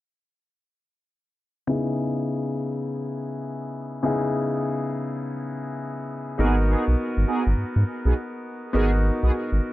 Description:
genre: R&B.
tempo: 102 BPM.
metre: 4/4.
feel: swing 65% on 16ths.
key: C# dorian.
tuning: A4 = 440 Hz.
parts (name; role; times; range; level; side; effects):
clear concert grand piano; accompaniment; 1.7-9.7 s; C#3 to A#4; -26 LUFS; left 2 dB; low-pass filter.
mellow synth brass; stabs; 6.4-9.3 s; B3 to G#4; -28 LUFS; right 3 dB; chorus, phaser, low-pass filter, digital delay.
round analog bass; bass; 6.4-9.6 s; G#1 to G#2; -20 LUFS; equal; none.
room: small room reverb.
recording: dark, warm production.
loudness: -23 LUFS.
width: side -16 dB against mid.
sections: 1.7-9.7 A section.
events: filter sweep 1.7-9.7.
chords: 1.7 C#m7; 6.4 G#m7.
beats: | 1.68 2.27 2.86 3.44 | 4.03 4.62 5.21 5.80 | 6.39 6.97 7.56 8.15 | 8.74 9.33.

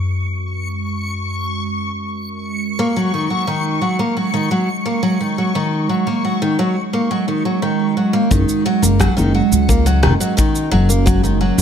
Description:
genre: folktronica.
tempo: 87 BPM.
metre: 4/4.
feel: straight.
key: F# major.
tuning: A4 = 440 Hz.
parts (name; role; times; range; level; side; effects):
warbly tape-like pad; sustained chords; 0.0-11.6 s; F#2 to A#4; -21 LUFS; right 3 dB; chorus, built-in reverb, phaser.
backwards swelling texture; texture; 0.0-8.3 s; C#6 to C#7; -26 LUFS; left 3 dB; built-in reverb.
picked twelve-string acoustic guitar; arpeggios; 2.8-11.6 s; D#3 to A#3; -18 LUFS; equal; digital delay.
upright bass; bass; 8.3-11.6 s; F#1 to C#2; -16 LUFS; left 1 dB; none.
electronic shaker and rim click; drums; 8.3-11.6 s; none; -23 LUFS; right 1 dB; none.
kick drum; drums; 8.3-11.2 s; none; -18 LUFS; left 1 dB; none.
room: moderate concert hall reverb, RT60 2.4 s.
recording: none.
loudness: -15 LUFS.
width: side -8 dB against mid.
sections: 0.0-8.3 A section; 8.3-11.6 B section.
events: filter sweep on ambient pad 0.0-8.3.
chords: 0.0 F#add9; 2.8 F#6; 8.3 D#m7/F#.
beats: | 0.03 0.72 1.41 2.10 | 2.79 3.48 4.17 4.86 | 5.55 6.24 6.93 7.62 | 8.31 9.00 9.69 10.38 | 11.07.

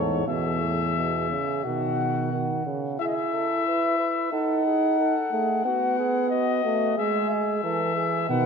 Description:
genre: classical, imitative canzona for brass ensemble.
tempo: 90 BPM.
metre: 4/4.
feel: uneven beats.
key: E major.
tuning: A4 = 445 Hz.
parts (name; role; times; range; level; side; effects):
dark trumpet; melody; 0.0-8.5 s; C#5 to F#5; -27 LUFS; left 8 dB; none.
mellow flugelhorn; second line; 0.0-8.5 s; F#4 to B4; -32 LUFS; right 6 dB; none.
warm euphonium; accompaniment; 0.0-8.5 s; G#2 to E4; -26 LUFS; right 2 dB; none.
dark tuba; bass; 0.0-2.6, 8.3-8.5 s; E2 to B2; -29 LUFS; right 3 dB; none.
room: wet church reverb, RT60 2.6 s.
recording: none.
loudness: -22 LUFS.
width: side -6 dB against mid.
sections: 0.0-3.0 A section; 3.0-8.5 B section.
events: none.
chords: 0.3 Bsus4/E; 1.6 B; 3.0 E; 4.3 D#dim; 5.7 B; 7.0 E/G#.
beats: | 0.26 0.95 1.64 2.33 | 3.00 3.67 4.33 4.99 | 5.65 6.31 6.97 7.63 | 8.29.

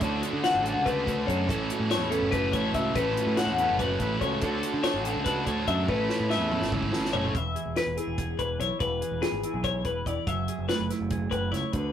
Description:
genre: math rock and midwest emo.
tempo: 287 BPM (eighths).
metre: 7/8.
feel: straight.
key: A major.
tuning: A4 = 437 Hz.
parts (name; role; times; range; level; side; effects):
semi-hollow electric guitar; accompaniment; 0.0-11.9 s; A2 to C#5; -33 LUFS; right 5 dB; none.
twelve-string electric guitar; arpeggios; 0.0-11.9 s; G#4 to F#5; -29 LUFS; left 4 dB; none.
overdriven electric guitar; riff; 0.0-7.3 s; A2 to A4; -30 LUFS; right 1 dB; none.
growling fingered electric bass; bass; 0.0-11.9 s; E1 to D3; -32 LUFS; right 1 dB; overdrive.
compact cocktail drum kit; drums; 0.0-11.8 s; hi-hat, kick drum, snare drum, toms; -33 LUFS; equal; none.
room: moderate studio ambience, RT60 0.5 s.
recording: rough rehearsal-room recording.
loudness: -25 LUFS.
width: side -9 dB against mid.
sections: 0.0-7.3 A section; 7.3-11.9 B section.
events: drum fill 5.9-7.3.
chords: 0.0 Dmaj9; 1.5 A69; 4.4 Dmaj9; 5.9 Amaj9; 7.3 E; 10.3 F#m9.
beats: | 0.02 0.23 0.43 0.65 0.85 1.06 1.27 | 1.48 1.69 1.90 2.11 2.32 2.53 2.74 | 2.95 3.16 3.37 3.58 3.79 4.00 4.21 | 4.42 4.63 4.84 5.05 5.25 5.46 5.67 | 5.88 6.09 6.30 6.51 6.72 6.93 7.14 | 7.35 7.56 7.77 7.97 8.18 8.39 8.60 | 8.81 9.02 9.23 9.44 9.65 9.86 10.07 | 10.28 10.48 10.69 10.90 11.11 11.32 11.53 | 11.74.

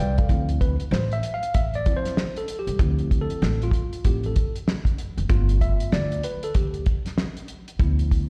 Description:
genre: hip hop, jazz-hop.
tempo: 96 BPM.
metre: 4/4.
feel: swing 62% on 16ths.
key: D dorian.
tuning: A4 = 440 Hz.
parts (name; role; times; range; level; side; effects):
tine electric piano; accompaniment; 0.0-8.3 s; F3 to G5; -32 LUFS; equal; none.
upright bass; bass; 0.0-8.2 s; F1 to D2; -27 LUFS; equal; none.
cloth-damped thuddy drum kit; drums; 0.2-8.3 s; hi-hat, kick drum, snare drum; -26 LUFS; equal; none.
room: light reverb, small room ambience.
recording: played on a big sound system in a bare room, large studio reverb.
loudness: -24 LUFS.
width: mono.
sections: 0.3-8.3 A section.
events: tine electric piano fill 0.0; tine electric piano solo 0.3-8.3.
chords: 0.3 Dm9; 5.3 G9.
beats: | 0.30 0.92 1.55 2.17 | 2.80 3.42 4.05 4.67 | 5.30 5.92 6.55 7.17 | 7.80.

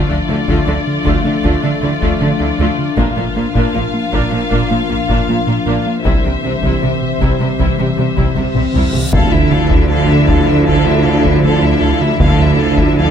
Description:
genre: cinematic, hybrid orchestral and electronic film score.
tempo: 78 BPM.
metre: 4/4.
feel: straight.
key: D minor.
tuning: A4 = 440 Hz.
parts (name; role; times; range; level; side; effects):
rich symphonic violin section; second line; 0.0-13.1 s; E4 to F5; -22 LUFS; left 3 dB; none.
rich symphonic viola section; accompaniment; 0.0-13.1 s; F3 to F4; -23 LUFS; right 1 dB; none.
warbly tape-like pad; sustained chords; 0.0-13.1 s; E3 to E5; -21 LUFS; left 2 dB; chorus, built-in reverb.
rubbery square bass; riff; 0.0-13.1 s; C2 to Bb3; -19 LUFS; right 2 dB; none.
harp-like synth pluck; arpeggios; 0.1-13.1 s; C3 to Bb4; -23 LUFS; left 6 dB; chorus, ping-pong delay.
rich symphonic cello section; bass; 0.1-13.1 s; Bb2 to D3; -20 LUFS; right 2 dB; none.
rich studio double bass section; bass; 0.3-13.1 s; Bb1 to D2; -20 LUFS; right 3 dB; none.
taiko ensemble; drums; 0.5-13.1 s; none; -19 LUFS; left 1 dB; none.
reverse cymbal and impact; sound effects; 8.7-12.2 s; none; -22 LUFS; left 1 dB; none.
rich symphonic violin section; melody; 9.1-13.1 s; E5 to F5; -21 LUFS; left 4 dB; none.
clear trombone section; sustained chords; 9.1-13.1 s; D3 to F3; -24 LUFS; right 7 dB; none.
mellow French horn section; sustained chords; 9.1-13.1 s; D4 to E4; -25 LUFS; left 5 dB; none.
mellow tuba; bass; 9.1-13.1 s; D2; -18 LUFS; right 3 dB; none.
room: light reverb.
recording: close, detailed microphones.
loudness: -11 LUFS.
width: side -8 dB against mid.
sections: 0.0-9.1 A section; 9.1-13.1 A section.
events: drum fill 8.4-9.1; reverse cymbal 8.7-9.1; impact 9.1-12.2.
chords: 0.0 Dmadd9; 3.0 Bb; 6.1 C; 9.1 Dmadd9.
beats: 0.67 1.44 2.21 | 2.98 3.75 4.52 5.29 | 6.06 6.83 7.59 8.36 | 9.13 9.90 10.67 11.44 | 12.21 12.98.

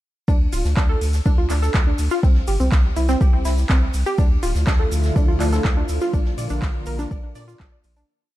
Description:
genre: progressive house.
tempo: 123 BPM.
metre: 4/4.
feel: straight.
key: unclear.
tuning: A4 = 442 Hz.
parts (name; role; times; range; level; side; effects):
wide unison pluck; arpeggios; 0.3-8.0 s; C4 to D5; -26 LUFS; equal; sidechain pumping, ping-pong delay.
round analog bass; bass; 0.3-8.0 s; D1 to Bb2; -22 LUFS; equal; sidechain pumping.
electronic kick drum; drums; 0.3-7.7 s; none; -18 LUFS; equal; overdrive.
jazz brush drum kit; drums; 0.3-8.0 s; hi-hat, ride cymbal, snare drum; -38 LUFS; left 1 dB; high-pass filter on cymbals, high-pass filter on hats, high-pass filter on snare, high-pass filter on room.
tube shaker; percussion; 0.3-8.1 s; none; -39 LUFS; right 4 dB; none.
deep house drum kit; drums; 0.5-7.9 s; handclaps, hi-hat; -30 LUFS; equal; overdrive.
lush unison pad; sustained chords; 4.5-8.1 s; D3 to Bb4; -28 LUFS; equal; chorus, sidechain pumping.
room: small room ambience.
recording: dark, warm production.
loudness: -17 LUFS.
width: side -15 dB against mid.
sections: 0.3-8.1 groove.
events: fade-out 5.5-8.1.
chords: 0.3 N.C.; 2.2 C5; 4.2 Dmadd9; 6.1 Bb.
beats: | 0.28 0.77 1.26 1.75 | 2.23 2.72 3.21 3.70 | 4.18 4.67 5.16 5.65 | 6.13 6.62 7.11 7.60.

